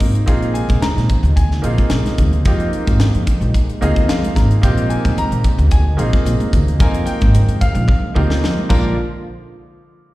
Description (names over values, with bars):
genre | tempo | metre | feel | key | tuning
electric jazz fusion | 110 BPM | 4/4 | swing 54% on 16ths | Bb mixolydian | A4 = 439 Hz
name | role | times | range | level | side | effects
bright grand piano | accompaniment | 0.0-8.9 s | F3 to Bb5 | -22 LUFS | right 1 dB | slapback echo
warm analog pad | sustained chords | 0.0-8.9 s | C3 to F4 | -27 LUFS | equal | chorus
upright bass | bass | 0.0-8.9 s | Ab1 to Bb2 | -16 LUFS | equal | none
crisp fusion drum kit | drums | 0.0-8.8 s | crash cymbal, hi-hat, kick drum, snare drum, toms | -17 LUFS | equal | none
congas | percussion | 0.7-9.0 s | none | -25 LUFS | right 1 dB | none
room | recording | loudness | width
little or no reverb | live gig heard through the venue's PA, recital hall reverb | -13 LUFS | side -18 dB against mid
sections
0.0-9.0 A section; 9.0-10.1 B section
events
grand piano fill 3.5-4.6; drum fill 7.9-9.0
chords
0.0 Bb9sus4; 8.7 Bb; 9.0 N.C.